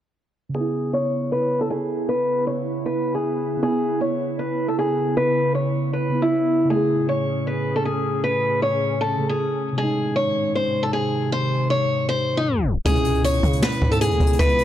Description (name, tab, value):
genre	hip hop, trap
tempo	156 BPM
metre	4/4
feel	half-time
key	C# minor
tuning	A4 = 439 Hz
part	picked steel-string acoustic guitar	melody	0.5-14.6 s	D#4 to C#5	-22 LUFS	left 1 dB	low-pass filter
part	muted felt-like synth keys	accompaniment	0.5-14.6 s	B2 to G#4	-27 LUFS	right 1 dB	chorus, low-pass filter
part	glassy FM pad	sustained chords	1.0-14.6 s	G#2 to G#4	-27 LUFS	right 1 dB	ensemble chorus, built-in reverb, low-pass filter
part	long sustained 808-style bass	bass	12.9-14.6 s	C#2 to C#3	-23 LUFS	equal	none
part	jazz brush drum kit	drums	12.9-14.6 s	hi-hat, kick drum, snare drum	-22 LUFS	equal	none
room	light reverb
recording	dry, gritty hardware recording, tape stop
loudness	-19 LUFS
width	side -11 dB against mid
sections	0.5-12.9 A section; 12.9-14.6 B section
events	filter sweep 0.5-12.9; tape stop 12.5-12.9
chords	0.5 C#m7; 6.7 Amaj7; 9.8 G#; 12.9 C#m7